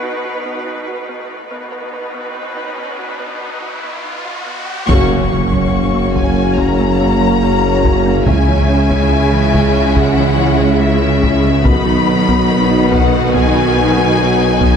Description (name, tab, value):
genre	cinematic, hybrid orchestral and electronic film score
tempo	71 BPM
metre	4/4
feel	straight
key	unclear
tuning	A4 = 440 Hz
part	warm symphonic viola section	accompaniment	0.0-14.8 s	D#3 to B4	-22 LUFS	equal	none
part	thumb-piano-like synth pluck	arpeggios	0.0-14.7 s	C#3 to B4	-24 LUFS	right 3 dB	none
part	rich symphonic cello section	bass	0.0-14.8 s	F#2 to C#3	-21 LUFS	right 3 dB	none
part	riser and impact	sound effects	1.3-8.3 s	none	-26 LUFS	left 1 dB	none
part	warm symphonic violin section	melody	4.9-14.8 s	E5 to C#6	-19 LUFS	left 6 dB	none
part	warm symphonic violin section	second line	4.9-14.8 s	E4 to E5	-22 LUFS	left 5 dB	none
part	mellow French horn section	sustained chords	4.9-14.8 s	B3 to F#4	-20 LUFS	left 5 dB	none
part	warm trombone section	sustained chords	4.9-14.8 s	C#3 to A#3	-22 LUFS	right 3 dB	none
part	mellow tuba	bass	4.9-14.8 s	F#1 to C#2	-20 LUFS	right 4 dB	none
part	rich symphonic double bass section	bass	4.9-14.8 s	F#1 to C#2	-22 LUFS	right 4 dB	none
part	warm sub bass	bass	4.9-14.8 s	F#1 to C#2	-20 LUFS	left 1 dB	none
part	taiko ensemble	drums	4.9-14.8 s	none	-19 LUFS	left 1 dB	none
room	moderate concert hall reverb, RT60 2.2 s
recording	high-pass filter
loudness	-11 LUFS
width	side -7 dB against mid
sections	0.0-4.9 A section; 4.9-14.8 B section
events	build-up 0.0-4.9; riser 1.3-4.9; band accent 4.9-5.7; impact 4.9-8.3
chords	0.0 B; 4.9 F#; 8.3 C#m; 11.7 B